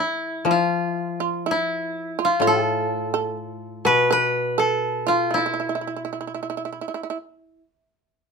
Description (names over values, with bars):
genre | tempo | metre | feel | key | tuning
japanese traditional, Japanese chamber music | 61 BPM | 2/4 | rubato | unclear | A4 = 436 Hz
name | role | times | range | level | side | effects
koto | melody | 0.0-7.6 s | E4 to B4 | -22 LUFS | equal | none
shamisen | second line | 0.0-7.2 s | E4 to B4 | -26 LUFS | right 8 dB | none
koto | accompaniment | 0.0-6.8 s | A2 to F3 | -27 LUFS | left 7 dB | none
room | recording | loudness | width
moderate studio reverb, RT60 0.5 s | minimal, uncompressed stereo recording | -20 LUFS | side -5 dB against mid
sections
0.0-8.3 A section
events
none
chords
none